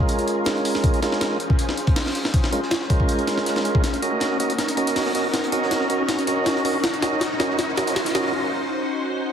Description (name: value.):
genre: drum and bass, jungle.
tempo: 160 BPM.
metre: 4/4.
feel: straight.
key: unclear.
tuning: A4 = 441 Hz.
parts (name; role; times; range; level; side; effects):
soft string machine; sustained chords; 0.0-9.3 s; Db4 to C5; -27 LUFS; left 1 dB; ensemble chorus.
tonewheel organ; stabs; 0.0-8.3 s; Ab3 to Eb5; -24 LUFS; right 2 dB; overdrive, stopped rotary speaker, vintage 12-bit sampler grit, low-pass filter, dub echo.
breakbeat sampler-style drum kit; drums; 0.0-8.2 s; hi-hat, kick drum, snare drum; -23 LUFS; equal; none.
riser; sound effects; 1.3-8.3 s; none; -32 LUFS; left 1 dB; none.
crunchy breakbeat drum kit; drums; 0.1-8.2 s; hi-hat, shaker, snare drum; -38 LUFS; equal; none.
room: moderate digital room reverb, RT60 1.3 s, small room ambience.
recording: heavily compressed radio sound, multiband compression.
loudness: -19 LUFS.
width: side -8 dB against mid.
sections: 0.0-9.3 A section.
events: build-up 0.0-9.3; filter sweep on tonewheel organ 0.0-9.3; riser 1.3-8.3; drum fill 3.8-8.3; break 8.3-9.3.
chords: 0.0 Bbm7; 3.8 Ebm7.